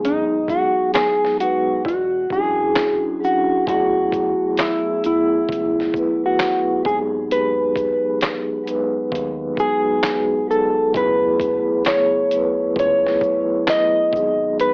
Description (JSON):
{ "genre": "lo-fi hip hop", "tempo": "66 BPM", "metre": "4/4", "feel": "swing 65% on 16ths", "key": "F# dorian", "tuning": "A4 = 441 Hz", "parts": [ { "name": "mellow electric guitar", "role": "melody", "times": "0.0-14.7 s", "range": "D#4 to D#5", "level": "-18 LUFS", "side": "equal", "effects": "cassette tape, plate reverb" }, { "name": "vibraphone with soft mallets", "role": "accompaniment", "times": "0.0-14.7 s", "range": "F#3 to B4", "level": "-21 LUFS", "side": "equal", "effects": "cassette tape, plate reverb" }, { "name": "deep dub fingered electric bass", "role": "bass", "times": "0.0-14.7 s", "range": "E1 to D#2", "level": "-34 LUFS", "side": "equal", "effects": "none" }, { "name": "trip hop sampler-style drum kit", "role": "drums", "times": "0.0-14.7 s", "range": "handclaps, hi-hat, kick drum, shaker, snare drum", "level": "-24 LUFS", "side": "equal", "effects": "cassette tape" } ], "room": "moderate studio reverb, RT60 0.6 s", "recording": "home recording on cassette, AM radio sound", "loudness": "-16 LUFS", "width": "side -36 dB against mid", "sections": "0.0-3.7 A section; 3.7-14.7 B section", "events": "none", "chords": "0.0 G#m7; 1.9 E13; 3.7 F#m11; 6.9 G#m7; 10.9 F#m11; 14.1 G#m7" }